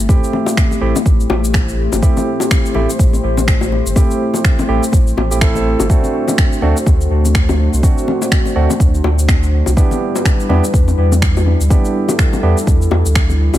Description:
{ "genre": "afro house", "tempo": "124 BPM", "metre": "4/4", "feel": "swing 58% on 16ths", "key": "A dorian", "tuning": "A4 = 444 Hz", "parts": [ { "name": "dark analog pad", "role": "sustained chords", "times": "0.0-13.6 s", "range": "G3 to C5", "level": "-21 LUFS", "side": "left 3 dB", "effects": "chorus, sidechain pumping" }, { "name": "warm sub bass", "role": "bass", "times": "0.0-13.6 s", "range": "G1 to E2", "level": "-15 LUFS", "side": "equal", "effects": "sidechain pumping" }, { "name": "barky tine electric piano", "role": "stabs", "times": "0.1-12.6 s", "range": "A3 to A4", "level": "-21 LUFS", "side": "right 4 dB", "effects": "sidechain pumping, tape echo" }, { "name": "electronic cabasa and finger snaps", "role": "drums", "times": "0.1-13.6 s", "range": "none", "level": "-22 LUFS", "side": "right 1 dB", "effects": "small room ambience" }, { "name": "electronic kick drum", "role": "drums", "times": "0.1-13.3 s", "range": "none", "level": "-13 LUFS", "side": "equal", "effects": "small room ambience" }, { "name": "bongos", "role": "percussion", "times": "0.1-13.6 s", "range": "none", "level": "-22 LUFS", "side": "left 4 dB", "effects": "none" } ], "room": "little or no reverb", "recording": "echo-heavy mix", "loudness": "-11 LUFS", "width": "side -13 dB against mid", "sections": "0.0-13.6 A section", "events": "none", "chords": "0.0 Am7; 5.9 D7; 9.8 Em7" }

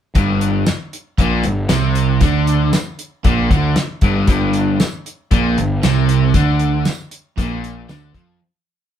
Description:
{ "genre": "classic rock", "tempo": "116 BPM", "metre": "4/4", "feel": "straight", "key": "G minor", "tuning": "A4 = 442 Hz", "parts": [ { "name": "fuzz picked electric bass", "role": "bass", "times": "0.1-8.4 s", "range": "G1 to F2", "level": "-22 LUFS", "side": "left 1 dB", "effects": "overdrive" }, { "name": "biting overdriven guitar", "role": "riff", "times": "0.2-8.4 s", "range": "G2 to F3", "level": "-20 LUFS", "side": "left 6 dB", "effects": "none" }, { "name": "crunchy overdriven guitar", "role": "riff", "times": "0.2-8.4 s", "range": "G2 to F3", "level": "-18 LUFS", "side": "right 7 dB", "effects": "none" }, { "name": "damped 70s drum kit", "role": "drums", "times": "0.2-8.3 s", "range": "hi-hat, kick drum, snare drum, tambourine", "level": "-18 LUFS", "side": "left 1 dB", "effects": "none" } ], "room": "moderate studio reverb, RT60 0.6 s", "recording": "band playing live in one room", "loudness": "-14 LUFS", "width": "side -10 dB against mid", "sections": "0.2-8.4 riff", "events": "fade-out 6.3-8.4", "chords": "0.2 Gm" }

